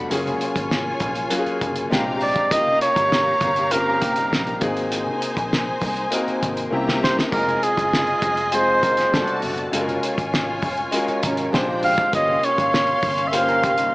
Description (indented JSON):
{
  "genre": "lush 1970s-style soul",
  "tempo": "100 BPM",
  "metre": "4/4",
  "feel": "straight",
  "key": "unclear",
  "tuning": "A4 = 440 Hz",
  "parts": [
    { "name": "rich studio string section", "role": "second line", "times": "0.0-13.9 s", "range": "Db4 to C6", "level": "-26 LUFS", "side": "left 1 dB", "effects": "analog delay" },
    { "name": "warm grand piano", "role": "accompaniment", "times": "0.0-13.9 s", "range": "B2 to Db5", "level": "-25 LUFS", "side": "left 1 dB", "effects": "none" },
    { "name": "vintage muted fingered electric bass", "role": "bass", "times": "0.0-13.9 s", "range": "F1 to C2", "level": "-35 LUFS", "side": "equal", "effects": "none" },
    { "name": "cloth-damped thuddy drum kit", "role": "drums", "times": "0.1-13.9 s", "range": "hi-hat, kick drum, snare drum, splash cymbal", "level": "-25 LUFS", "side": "equal", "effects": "none" },
    { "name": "congas", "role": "percussion", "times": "0.1-13.8 s", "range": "none", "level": "-37 LUFS", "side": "right 1 dB", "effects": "none" },
    { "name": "clear flugelhorn", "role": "melody", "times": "2.2-13.9 s", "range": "Ab4 to F5", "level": "-19 LUFS", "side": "right 1 dB", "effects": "none" },
    { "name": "electric guitar through a small old amp", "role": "riff", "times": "3.9-4.6, 8.8-13.9 s", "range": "G3 to Db5", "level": "-29 LUFS", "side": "right 2 dB", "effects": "warbly pitch drift" }
  ],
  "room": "light reverb, small room ambience",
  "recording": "small speaker sound",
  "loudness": "-18 LUFS",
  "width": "side -23 dB against mid",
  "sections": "0.0-13.9 A section",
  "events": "drum fill 6.7-7.3",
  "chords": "0.1 Gbmaj9; 1.9 Bb13; 2.5 Eb13/G; 4.6 Ab9; 6.7 C7b9; 7.3 Fm7; 9.1 Gmaj9; 9.7 Gbmaj9; 11.5 Bb13; 12.1 Eb13/G (rootless)"
}